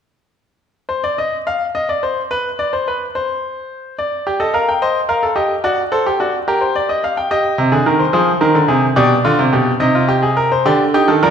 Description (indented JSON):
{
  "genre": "classical, baroque-style 3-part fugue for grand piano",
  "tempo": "72 BPM (dotted quarters)",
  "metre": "6/8",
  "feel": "straight",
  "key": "C minor",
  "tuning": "A4 = 440 Hz",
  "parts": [
    { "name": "bright baby grand piano", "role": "solo", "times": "0.9-11.3 s", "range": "B2 to G5", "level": "-14 LUFS", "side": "equal", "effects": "none" }
  ],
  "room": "wet scoring stage reverb, RT60 1.4 s",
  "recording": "recorded in a church or concert hall",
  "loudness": "-14 LUFS",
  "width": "side -7 dB against mid",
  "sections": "0.6-11.3 A section",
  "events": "none",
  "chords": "0.6 N.C.; 4.0 Gm; 4.8 Cm; 5.7 D7/F#; 6.5 Gm; 7.3 Cm; 8.1 Fm; 9.0 G7/B; 9.8 Cm; 10.7 G5/D",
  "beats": "| 0.61 1.46 | 2.31 3.15 | 3.99 4.82 | 5.65 6.48 | 7.31 8.14 | 8.97 9.81 | 10.66"
}